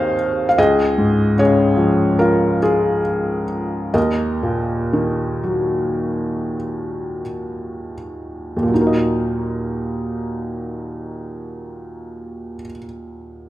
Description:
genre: classical, lyrical solo piano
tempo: 39-77 BPM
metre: 4/4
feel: rubato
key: Eb minor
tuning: A4 = 443 Hz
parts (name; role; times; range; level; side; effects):
- felt-muted upright piano; solo; 0.0-13.5 s; Db2 to F5; -18 LUFS; equal; none
room: moderate recital hall reverb, RT60 1.7 s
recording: minimal, uncompressed stereo recording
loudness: -16 LUFS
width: side -14 dB against mid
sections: 0.0-8.7 A section; 8.7-13.5 B section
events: slowing down 0.6-8.7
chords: 0.0 Ab/Eb; 0.6 Db; 3.9 Ebm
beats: | 0.58 1.37 2.19 3.03 | 3.93 4.92 6.00 7.25 | 8.71 10.20 11.67 13.14

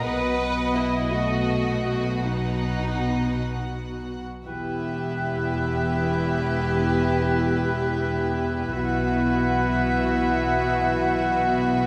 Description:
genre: cinematic, emotional film score for orchestra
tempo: 56 BPM (dotted quarters)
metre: 6/8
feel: rubato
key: E minor from 4.5 s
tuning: A4 = 440 Hz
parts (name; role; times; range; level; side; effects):
- warm studio violin section; melody; 0.0-11.9 s; E5 to F#5; -37 LUFS; equal; none
- dark studio violin section; second line; 0.0-11.9 s; D#4 to B4; -34 LUFS; equal; none
- dark studio viola section; accompaniment; 0.0-11.9 s; A3 to D#5; -33 LUFS; equal; none
- dark studio cello section; bass; 0.0-11.9 s; E2 to B2; -31 LUFS; equal; none
- dark studio double bass section; bass; 0.0-11.9 s; E1 to B1; -31 LUFS; equal; none
- mellow clarinet; second line; 4.5-11.9 s; E4; -34 LUFS; equal; none
- mellow small flute group; second line; 4.5-11.9 s; F#5 to G5; -32 LUFS; equal; none
- warm oboe; second line; 4.5-11.9 s; B4; -33 LUFS; equal; none
- mellow French horn section; sustained chords; 4.5-11.9 s; E3 to G4; -32 LUFS; equal; none
room: wet scoring stage reverb, RT60 1.7 s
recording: none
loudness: -24 LUFS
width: mono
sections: 0.0-4.5 A section; 4.5-11.9 B section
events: none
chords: 0.0 B; 4.5 Em; 8.7 Bsus4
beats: | 0.05 1.13 | 2.24 3.36 | 4.47 5.54 | 6.61 7.67 | 8.74 9.81 | 10.86

